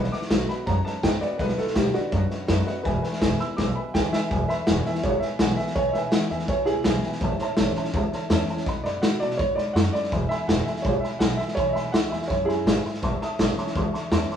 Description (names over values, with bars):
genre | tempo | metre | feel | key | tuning
rockabilly | 165 BPM | 4/4 | straight | E major | A4 = 441 Hz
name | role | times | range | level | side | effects
honky-tonk upright piano | accompaniment | 0.0-14.4 s | B4 to D#6 | -32 LUFS | right 2 dB | none
picked steel-string acoustic guitar | accompaniment | 0.0-14.4 s | E2 to F#4 | -32 LUFS | left 4 dB | none
upright bass | bass | 0.0-14.3 s | E1 to B2 | -28 LUFS | equal | none
raw garage drum kit | drums | 0.0-14.3 s | hi-hat, kick drum, snare drum | -25 LUFS | equal | none
warm upright piano | melody | 0.1-12.8 s | D4 to E6 | -27 LUFS | right 1 dB | none
room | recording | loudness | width
moderate stone room reverb, RT60 1.1 s | band playing live in one room, small room ambience, faint mains hum | -22 LUFS | side -8 dB against mid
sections
0.0-4.3 A section; 4.3-14.4 B section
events
drum fill 3.6-4.3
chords
0.0 B7; 2.9 E; 7.2 A; 8.7 B7; 10.1 E; 13.0 A